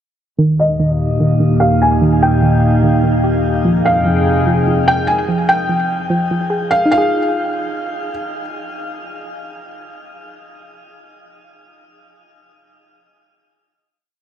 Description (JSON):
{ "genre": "hip hop, atmospheric cloud-rap", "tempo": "147 BPM", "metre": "4/4", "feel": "half-time", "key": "F minor", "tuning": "A4 = 439 Hz", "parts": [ { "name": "warbly tape-like pad", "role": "sustained chords", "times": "0.7-5.3 s", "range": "Eb2 to G5", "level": "-17 LUFS", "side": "equal", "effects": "chorus, built-in reverb, low-pass filter" }, { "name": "soft round pluck", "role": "arpeggios", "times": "0.4-10.1 s", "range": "Eb3 to Ab4", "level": "-18 LUFS", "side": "right 1 dB", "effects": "chorus, low-pass filter, digital delay" }, { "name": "felt-muted upright piano", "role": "melody", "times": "0.6-8.1 s", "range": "Eb5 to Ab5", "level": "-18 LUFS", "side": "equal", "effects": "low-pass filter, digital delay" } ], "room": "moderate shimmer reverb, RT60 7.7 s", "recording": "dark, warm production", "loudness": "-13 LUFS", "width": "side -10 dB against mid", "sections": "0.4-6.9 breakdown; 6.9-10.2 final chord", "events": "filter sweep 0.4-6.9", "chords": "0.4 Eb; 3.6 Fm7", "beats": "| 0.38 0.79 1.20 1.61 | 2.02 2.42 2.83 3.24 | 3.65 4.06 4.47 4.87 | 5.28 5.69 6.10 6.51 | 6.92 7.32 7.73 8.14 | 8.55 8.96 9.36 9.77" }